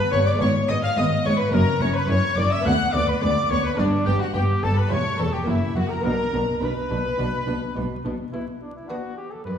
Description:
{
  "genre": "classical, baroque-style concerto movement with solo episodes",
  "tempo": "106 BPM",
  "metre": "4/4",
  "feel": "straight",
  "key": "B minor",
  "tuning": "A4 = 442 Hz",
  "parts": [
    { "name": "clear trumpet", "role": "melody", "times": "0.0-9.6 s", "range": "D4 to F#5", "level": "-28 LUFS", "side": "left 1 dB", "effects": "none" },
    { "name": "warm chamber violin section", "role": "melody", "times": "0.0-9.6 s", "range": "D5 to F#6", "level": "-30 LUFS", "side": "left 2 dB", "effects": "none" },
    { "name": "rich chamber violin section", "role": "second line", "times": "0.0-9.3 s", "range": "D4 to F#5", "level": "-27 LUFS", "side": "left 2 dB", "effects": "none" },
    { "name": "buff-stop harpsichord", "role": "accompaniment", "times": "0.0-9.6 s", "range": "D2 to G4", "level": "-30 LUFS", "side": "left 1 dB", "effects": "none" },
    { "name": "dark chamber viola section", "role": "accompaniment", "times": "0.1-9.3 s", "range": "G3 to D4", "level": "-31 LUFS", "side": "equal", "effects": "none" },
    { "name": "rich chamber double bass section", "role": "bass", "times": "0.1-8.1 s", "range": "E1 to D2", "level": "-25 LUFS", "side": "equal", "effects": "none" },
    { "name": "warm chamber cello section", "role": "bass", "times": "0.1-9.6 s", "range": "D2 to B2", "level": "-28 LUFS", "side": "right 1 dB", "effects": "none" }
  ],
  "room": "wet recital hall reverb, RT60 1.7 s",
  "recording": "heard from further back in the room, vinyl crackle",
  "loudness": "-20 LUFS",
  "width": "side -8 dB against mid",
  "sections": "0.0-8.3 A section; 8.3-9.6 B section",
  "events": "none",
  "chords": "0.4 C#7/G#; 1.5 F#; 2.6 Bm/D; 3.8 G; 4.9 C#dim/E; 5.5 F#7; 6.0 Bm"
}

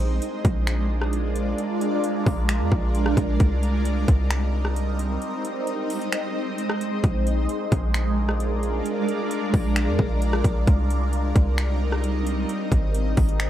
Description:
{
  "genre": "hip hop, atmospheric cloud-rap",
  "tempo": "132 BPM",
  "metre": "4/4",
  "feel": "half-time",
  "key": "unclear",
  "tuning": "A4 = 440 Hz",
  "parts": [
    { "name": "shimmering ambient pad", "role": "sustained chords", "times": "0.0-13.5 s", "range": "G3 to Eb5", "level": "-26 LUFS", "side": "right 1 dB", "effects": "chorus, built-in reverb, phaser, sidechain pumping" },
    { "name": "warm 808-style bass", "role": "bass", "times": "0.0-13.5 s", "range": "Ab1 to F2", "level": "-23 LUFS", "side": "equal", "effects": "none" },
    { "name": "trap drum kit", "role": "drums", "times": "0.2-13.5 s", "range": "finger snaps, hi-hat, kick drum, rim click", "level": "-24 LUFS", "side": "equal", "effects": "overdrive" }
  ],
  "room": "light reverb",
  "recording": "none",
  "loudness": "-21 LUFS",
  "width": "side -12 dB against mid",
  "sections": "0.0-13.5 A section",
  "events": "break 5.2-7.0",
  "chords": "0.0 Bb7; 3.4 Cm7; 5.2 Ab; 7.0 Bb7; 10.7 Cm7; 12.5 Ab"
}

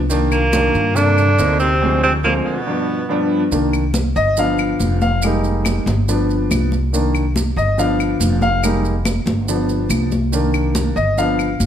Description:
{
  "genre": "Afro-Cuban jazz",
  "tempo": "141 BPM",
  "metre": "4/4",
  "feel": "straight",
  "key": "C minor, C harmonic minor from 3.5 s",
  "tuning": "A4 = 440 Hz",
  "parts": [
    { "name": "upright bass", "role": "bass", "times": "0.0-11.7 s", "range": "F1 to G2", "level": "-19 LUFS", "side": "equal", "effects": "none" },
    { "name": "clear baby grand piano", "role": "accompaniment", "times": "0.1-11.7 s", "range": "D2 to F5", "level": "-19 LUFS", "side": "left 1 dB", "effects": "none" },
    { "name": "congas", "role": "percussion", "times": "0.1-11.7 s", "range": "none", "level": "-24 LUFS", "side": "equal", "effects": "none" },
    { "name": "maracas", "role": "percussion", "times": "0.1-11.7 s", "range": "none", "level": "-30 LUFS", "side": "right 7 dB", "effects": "none" },
    { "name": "clear tenor saxophone", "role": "melody", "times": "0.3-3.3 s", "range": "Bb3 to D4", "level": "-18 LUFS", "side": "right 3 dB", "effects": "none" },
    { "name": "warm baritone saxophone", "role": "second line", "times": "0.3-3.3 s", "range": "Bb2 to D3", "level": "-26 LUFS", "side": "left 4 dB", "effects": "none" },
    { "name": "claves", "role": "percussion", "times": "0.3-11.6 s", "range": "none", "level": "-29 LUFS", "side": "left 7 dB", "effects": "none" }
  ],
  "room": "moderate large studio reverb, RT60 1.2 s",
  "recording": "none",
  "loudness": "-15 LUFS",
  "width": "side -9 dB against mid",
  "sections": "0.0-3.5 A section; 3.5-11.7 B section",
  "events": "break 1.8-3.5; grand piano solo 3.5-11.7",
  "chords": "0.1 Cm7; 1.8 Dm7b5; 2.7 G7; 3.5 Cm9; 4.4 G7; 5.2 Fm11; 6.1 G7; 6.9 Cm9; 7.8 G7; 8.6 Fm11; 9.5 G7; 10.3 Cm9"
}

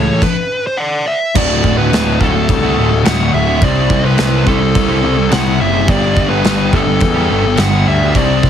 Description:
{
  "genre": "quiet-loud alternative rock",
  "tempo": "106 BPM",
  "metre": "4/4",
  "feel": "straight",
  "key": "D mixolydian",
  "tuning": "A4 = 441 Hz",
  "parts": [
    { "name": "fuzz lead guitar", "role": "melody", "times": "0.0-8.5 s", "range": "A4 to F#5", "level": "-18 LUFS", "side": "left 1 dB", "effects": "distortion" },
    { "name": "sludgy distorted guitar", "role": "riff", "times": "0.0-8.5 s", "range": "D2 to C5", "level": "-18 LUFS", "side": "right 12 dB", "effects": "overdrive" },
    { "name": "thick fuzz guitar", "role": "riff", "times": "0.0-8.5 s", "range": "D2 to C5", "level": "-17 LUFS", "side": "left 9 dB", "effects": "distortion" },
    { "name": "fuzz picked electric bass", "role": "bass", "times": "0.0-8.5 s", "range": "D1 to E2", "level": "-16 LUFS", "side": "equal", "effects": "overdrive" },
    { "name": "loose indie drum kit", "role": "drums", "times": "0.2-8.5 s", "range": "crash cymbal, kick drum, snare drum", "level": "-17 LUFS", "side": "equal", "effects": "none" }
  ],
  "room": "little or no reverb",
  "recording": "heavily compressed radio sound, multiband compression",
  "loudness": "-11 LUFS",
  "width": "side -9 dB against mid",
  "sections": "0.0-1.4 A section; 1.4-8.5 B section",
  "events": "stop 0.2-1.4",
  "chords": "0.2 N.C.; 1.4 D; 3.6 C; 5.9 G"
}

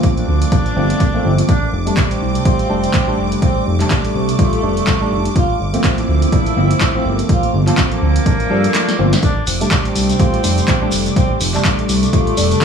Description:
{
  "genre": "deep house",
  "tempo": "124 BPM",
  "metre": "4/4",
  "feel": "swing 58% on 16ths",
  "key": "F major",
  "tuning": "A4 = 440 Hz",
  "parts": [
    { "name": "percussive organ stab", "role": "stabs", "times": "0.0-12.6 s", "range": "F3 to A4", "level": "-19 LUFS", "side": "equal", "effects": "analog chorus, cassette tape, sidechain pumping, tape echo" },
    { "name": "electronic kick drum", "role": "drums", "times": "0.0-12.6 s", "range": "none", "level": "-16 LUFS", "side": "equal", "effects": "none" },
    { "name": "punchy analog drum machine", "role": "drums", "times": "0.0-12.6 s", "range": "handclaps, hi-hat, snare drum", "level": "-22 LUFS", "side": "equal", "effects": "none" },
    { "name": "analog string pad", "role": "texture", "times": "0.0-12.6 s", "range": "D6", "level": "-30 LUFS", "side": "right 2 dB", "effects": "ensemble chorus" },
    { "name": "mellow tenor saxophone", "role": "melody", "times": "0.2-12.6 s", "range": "A3 to F4", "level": "-22 LUFS", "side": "right 1 dB", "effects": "tape echo" },
    { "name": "smooth synth bass", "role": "bass", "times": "0.3-12.5 s", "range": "F1 to G2", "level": "-17 LUFS", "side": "equal", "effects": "tube saturation, sidechain pumping" },
    { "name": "shekere", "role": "percussion", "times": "9.2-12.6 s", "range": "none", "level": "-26 LUFS", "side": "left 6 dB", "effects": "tape echo" }
  ],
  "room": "light reverb, digital ambience",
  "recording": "echo-heavy mix, studio reverb",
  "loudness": "-13 LUFS",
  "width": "side -7 dB against mid",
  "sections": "0.0-12.6 A section",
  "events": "kick drops out 8.7-9.2; drum fill 8.7-9.2",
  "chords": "0.0 Gm11; 1.5 F69; 5.4 Gm11; 9.2 F69"
}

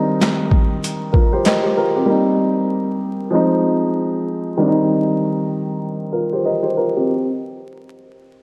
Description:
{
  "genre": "hip hop, boom-bap hip-hop",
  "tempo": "96 BPM",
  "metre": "4/4",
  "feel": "swing 59% on 16ths",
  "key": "C minor",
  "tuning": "A4 = 440 Hz",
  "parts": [
    { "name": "dark baby grand piano", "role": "accompaniment", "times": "0.0-7.3 s", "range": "Eb3 to Eb5", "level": "-19 LUFS", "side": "equal", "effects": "high-pass filter, low-pass filter" },
    { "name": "boom bap sampler-style drum kit", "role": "drums", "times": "0.2-1.6 s", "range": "hi-hat, kick drum, snare drum", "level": "-19 LUFS", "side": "equal", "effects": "overdrive" }
  ],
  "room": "wet plate reverb, RT60 2.8 s",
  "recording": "dreamy mix soaked in reverb, vinyl crackle, lossy compression artefacts",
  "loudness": "-18 LUFS",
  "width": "mono",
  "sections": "0.0-7.1 A section",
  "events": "filter sweep on grand piano 0.0-7.1",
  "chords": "0.0 Cm; 2.1 Eb6/G; 3.3 Fm7; 4.6 Cm"
}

